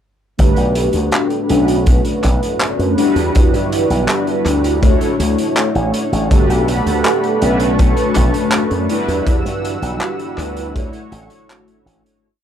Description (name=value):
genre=vaporwave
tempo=81 BPM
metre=4/4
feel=straight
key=E dorian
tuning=A4 = 436 Hz
part: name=mellow synth brass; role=accompaniment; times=0.4-12.3 s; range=G3 to C#5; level=-16 LUFS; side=equal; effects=wide subtle chorus, analog delay
part: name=slap bass with an envelope filter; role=bass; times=0.4-12.0 s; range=G1 to G2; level=-19 LUFS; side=equal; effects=none
part: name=kick drum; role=drums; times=0.4-10.9 s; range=none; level=-15 LUFS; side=equal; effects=none
part: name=raw garage drum kit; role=drums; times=0.4-12.2 s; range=handclaps, hi-hat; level=-23 LUFS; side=equal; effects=none
part: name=lush unison pad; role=sustained chords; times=6.3-12.2 s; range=A4 to E6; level=-24 LUFS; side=right 1 dB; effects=chorus
room=moderate small room reverb, RT60 0.5 s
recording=rough home demo mix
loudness=-13 LUFS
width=side -9 dB against mid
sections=0.4-12.2 groove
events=fade-out 8.3-12.2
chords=0.4 Gmaj9; 1.5 Bm9; 3.0 Em9; 4.8 Dmaj9; 6.3 Gmaj9; 7.4 Bm9; 8.9 Em9; 10.8 Dmaj9